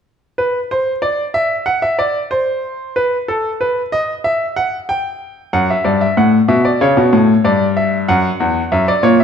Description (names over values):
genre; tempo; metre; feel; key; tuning
classical, baroque-style two-part invention for grand piano; 94 BPM; 4/4; straight; unclear; A4 = 441 Hz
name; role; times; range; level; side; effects
bright grand piano; solo; 0.4-9.2 s; E2 to G5; -13 LUFS; equal; none
room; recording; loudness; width
wet recital hall reverb, RT60 1.4 s; dark, warm production; -13 LUFS; side -7 dB against mid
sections
0.4-9.2 A section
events
none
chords
0.4 N.C.; 5.5 Bm/F#; 6.8 C#dim; 8.1 F#7